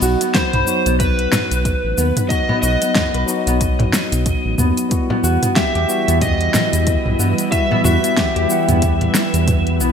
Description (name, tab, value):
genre	organic downtempo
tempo	92 BPM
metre	4/4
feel	swing 58% on 16ths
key	unclear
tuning	A4 = 442 Hz
part	tine electric piano	accompaniment	0.0-9.9 s	F#3 to F#5	-24 LUFS	left 3 dB	medium tremolo, sidechain pumping, ping-pong delay
part	concert harp	arpeggios	0.0-9.9 s	B3 to B5	-23 LUFS	left 1 dB	ping-pong delay
part	round analog bass	bass	0.0-9.9 s	A1 to G2	-19 LUFS	equal	sidechain pumping
part	deep house drum kit	drums	0.0-9.9 s	cabasa, hi-hat, snare drum, toms	-20 LUFS	equal	gated reverb
part	overdriven slide guitar	melody	0.3-9.8 s	B4 to E5	-21 LUFS	equal	lush chorus, ping-pong delay
part	electronic kick drum	drums	0.3-9.6 s	none	-21 LUFS	equal	none
part	frame drum	percussion	1.3-9.1 s	none	-24 LUFS	left 1 dB	none
part	ethereal airy pad	sustained chords	5.9-9.9 s	E3 to B4	-24 LUFS	equal	ensemble chorus, built-in reverb, sidechain pumping
room	moderate lush hall reverb, RT60 2.1 s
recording	bright 1980s-style digital production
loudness	-14 LUFS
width	side -7 dB against mid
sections	0.0-9.9 A section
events	none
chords	0.0 B; 4.9 Emadd9